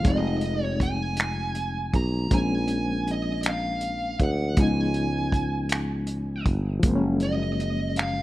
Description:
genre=slow six-eight R&B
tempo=53 BPM (dotted quarters)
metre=6/8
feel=straight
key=Bb minor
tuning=A4 = 440 Hz
part: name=smooth overdriven lead guitar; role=melody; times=0.0-8.2 s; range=Eb5 to Bb5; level=-31 LUFS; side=right 2 dB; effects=none
part: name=overdriven reed electric piano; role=accompaniment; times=0.0-8.2 s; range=F3 to Eb4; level=-29 LUFS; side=left 2 dB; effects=fast tremolo
part: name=warm soul drum kit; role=drums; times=0.0-8.2 s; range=finger snaps, hi-hat, kick drum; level=-25 LUFS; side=equal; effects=none
part: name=sustaining fretless electric bass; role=bass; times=0.1-8.2 s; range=F1 to D2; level=-27 LUFS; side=equal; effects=none
room=small room ambience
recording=rough home demo mix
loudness=-23 LUFS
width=side -16 dB against mid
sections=0.0-8.2 A section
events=none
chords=0.0 Fm7; 2.3 Bbm9; 4.6 Db9; 6.8 Gbmaj9

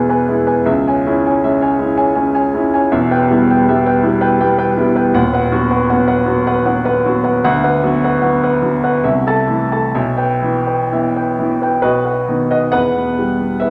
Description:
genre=classical, romantic nocturne for solo piano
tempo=61-84 BPM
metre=3/4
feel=rubato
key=E minor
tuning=A4 = 440 Hz
part: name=warm grand piano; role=solo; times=0.0-13.7 s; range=D#1 to A5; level=-15 LUFS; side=equal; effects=none
room=wet recital hall reverb, RT60 1.5 s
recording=none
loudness=-15 LUFS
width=mono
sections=0.0-12.7 A section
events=none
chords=0.0 E; 0.7 C#m; 2.9 Em; 5.2 B/D#; 7.4 Bm/D; 9.0 Am/C; 9.9 Em/B; 11.8 B; 12.7 Em

